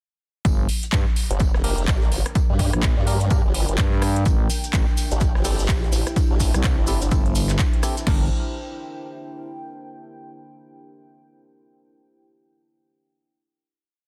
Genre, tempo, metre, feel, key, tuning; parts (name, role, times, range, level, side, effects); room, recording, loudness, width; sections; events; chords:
bass house; 126 BPM; 4/4; swing 60% on 16ths; G dorian; A4 = 439 Hz
big-room dance drum kit; drums; 0.4-8.2 s; crash cymbal, kick drum, snare drum; -23 LUFS; equal; overdrive
deep dark ambient pad; texture; 2.0-9.9 s; D4 to Bb5; -39 LUFS; equal; chorus, built-in reverb, sidechain pumping
growling FM bass; bass; 0.5-8.3 s; G1 to G2; -25 LUFS; equal; overdrive, sidechain pumping
house drum kit; drums; 0.5-8.0 s; handclaps, hi-hat, rim click; -32 LUFS; equal
oversized low-tuned drum kit; drums; 0.5-8.1 s; hi-hat, snare drum, tambourine; -42 LUFS; equal
formant-sweep wobble bass; bass; 1.3-7.1 s; F1 to G2; -25 LUFS; equal; chorus, tube saturation, sidechain pumping
percussive organ stab; stabs; 1.6-8.3 s; Bb3 to Bb4; -36 LUFS; equal; chorus, sidechain pumping, tape echo
cabasa; percussion; 4.3-8.0 s; -36 LUFS; equal
buzzing kalimba; melody; 5.4-7.2 s; D4 to G4; -37 LUFS; equal; tape echo
small room ambience; dense, heavily limited modern master; -21 LUFS; mono
0.4-8.1 drop; 8.1-10.0 final chord
drop 0.4-8.1
0.4 Gm; 4.3 Am7; 8.1 Gm